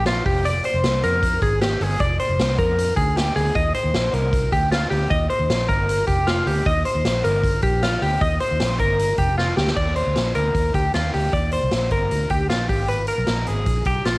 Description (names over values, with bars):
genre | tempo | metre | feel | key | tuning
jangly indie pop | 155 BPM | 4/4 | straight | Eb major | A4 = 440 Hz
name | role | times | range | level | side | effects
twelve-string electric guitar | arpeggios | 0.0-14.2 s | F4 to Eb5 | -21 LUFS | left 1 dB | spring reverb, cassette tape
vintage muted fingered electric bass | bass | 0.0-14.2 s | F1 to F2 | -23 LUFS | equal | none
raw garage drum kit | drums | 0.1-14.1 s | crash cymbal, hi-hat, kick drum, snare drum | -24 LUFS | equal | none
room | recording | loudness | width
studio reverb | home recording on cassette | -18 LUFS | side -22 dB against mid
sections
0.0-9.8 A section; 9.8-14.2 B section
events
drum fill 9.4-9.8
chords
0.3 Fm; 3.6 Eb; 9.8 Ebmaj7; 12.7 Abm